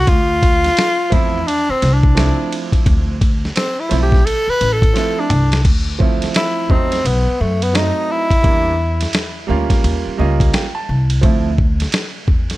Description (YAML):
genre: hip hop, jazz-hop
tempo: 86 BPM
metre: 4/4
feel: swing 62% on 16ths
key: unclear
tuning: A4 = 441 Hz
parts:
  - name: warm tenor saxophone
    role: melody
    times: 0.0-9.2 s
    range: A3 to B4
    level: -18 LUFS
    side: left 1 dB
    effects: tape echo
  - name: upright bass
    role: bass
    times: 0.0-12.6 s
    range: A1 to F#2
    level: -18 LUFS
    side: equal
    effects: none
  - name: dusty soul sampler-style drum kit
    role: drums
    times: 0.1-12.6 s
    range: crash cymbal, hi-hat, kick drum, ride cymbal, snare drum, toms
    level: -17 LUFS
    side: equal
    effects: none
  - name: warm concert grand piano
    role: accompaniment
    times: 1.1-11.5 s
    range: F3 to A5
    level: -22 LUFS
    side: right 6 dB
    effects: none
room: small room ambience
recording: none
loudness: -13 LUFS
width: side -17 dB against mid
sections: 0.0-5.7 A section; 5.7-12.6 B section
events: tenor saxophone solo 0.0-5.7; drum fill 5.0-5.7; grand piano fill 9.8-11.2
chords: 0.1 Dm9; 7.0 B7b9; 8.4 Em7b5; 9.8 Eb9; 11.2 Dm9